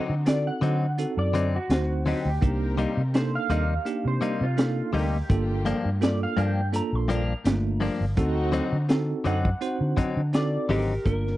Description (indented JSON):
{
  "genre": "straight-eighth soul blues",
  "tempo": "83 BPM",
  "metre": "4/4",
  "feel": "swing 55% on 16ths",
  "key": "unclear",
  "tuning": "A4 = 440 Hz",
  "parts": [
    { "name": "bell-like tine electric piano", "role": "accompaniment", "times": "0.0-11.4 s", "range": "A3 to C5", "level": "-30 LUFS", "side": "right 3 dB", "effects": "fast stereo tremolo" },
    { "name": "dark studio string section", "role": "sustained chords", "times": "0.0-10.9 s", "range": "Bb3 to Bb4", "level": "-37 LUFS", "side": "left 2 dB", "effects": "none" },
    { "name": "direct-recorded clean electric guitar", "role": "stabs", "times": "0.0-10.9 s", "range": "G2 to Eb4", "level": "-28 LUFS", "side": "left 4 dB", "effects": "spring reverb" },
    { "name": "vintage muted fingered electric bass", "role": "bass", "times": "0.1-11.4 s", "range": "G1 to D3", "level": "-26 LUFS", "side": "equal", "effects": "none" },
    { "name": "electric guitar through a small old amp", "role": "second line", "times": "0.3-11.1 s", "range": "F4 to C6", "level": "-32 LUFS", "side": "right 1 dB", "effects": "analog chorus" },
    { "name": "crunchy breakbeat drum kit", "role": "drums", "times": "0.3-11.3 s", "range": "hi-hat, kick drum, snare drum", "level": "-24 LUFS", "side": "equal", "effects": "none" },
    { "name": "electric slide guitar", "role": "melody", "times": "10.7-11.4 s", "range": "G4 to Bb4", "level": "-30 LUFS", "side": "equal", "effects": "none" }
  ],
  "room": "little or no reverb",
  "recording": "dry, close 1970s-style studio recording",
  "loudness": "-23 LUFS",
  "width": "side -16 dB against mid",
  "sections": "0.0-11.1 A section",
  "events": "clean electric guitar solo 0.0-11.1",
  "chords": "0.0 D7b9; 2.4 Cm7; 5.3 Gm7; 8.2 D7b9",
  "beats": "0.26 0.98 1.70 | 2.42 3.14 3.86 4.58 | 5.30 6.02 6.74 7.46 | 8.17 8.89 9.61 10.34 | 11.05"
}